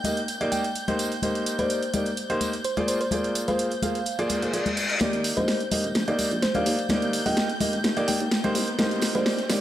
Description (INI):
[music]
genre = piano house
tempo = 127 BPM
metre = 4/4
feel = swing 53% on 16ths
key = Eb major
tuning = A4 = 440 Hz
[part]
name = muted studio violin section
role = sustained chords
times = 0.0-9.6 s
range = G6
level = -35 LUFS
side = right 1 dB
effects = low-pass filter
[part]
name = warm grand piano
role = riff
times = 0.0-9.6 s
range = Bb3 to F5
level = -27 LUFS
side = equal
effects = low-pass filter, analog delay
[part]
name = house drum kit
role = drums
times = 0.0-9.6 s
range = hi-hat, snare drum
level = -28 LUFS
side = right 1 dB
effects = none
[part]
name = congas and tambourine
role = percussion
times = 0.0-9.6 s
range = none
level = -31 LUFS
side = left 3 dB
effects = none
[part]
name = thumb-piano-like synth pluck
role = melody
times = 0.5-9.3 s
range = C5 to G5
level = -31 LUFS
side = equal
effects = chorus, cassette tape, analog delay
[part]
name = reverse cymbal and riser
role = sound effects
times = 4.3-9.6 s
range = none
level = -33 LUFS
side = left 2 dB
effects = none
[part]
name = solid FM bass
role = bass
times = 5.0-9.2 s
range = Eb1 to Eb2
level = -31 LUFS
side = equal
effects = high-pass filter
[sound]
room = light reverb, small room ambience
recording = dry, gritty hardware recording, high-pass filter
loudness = -23 LUFS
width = side -12 dB against mid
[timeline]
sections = 0.0-5.0 A section; 5.0-9.6 B section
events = reverse cymbal 4.3-5.0; build-up 5.0-9.6; drum fill 5.0-9.6; filter sweep on grand piano 5.0-9.6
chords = 0.0 Ebmaj7; 1.0 Cm7; 2.9 Bb7; 5.0 Ebmaj7; 8.6 Cm7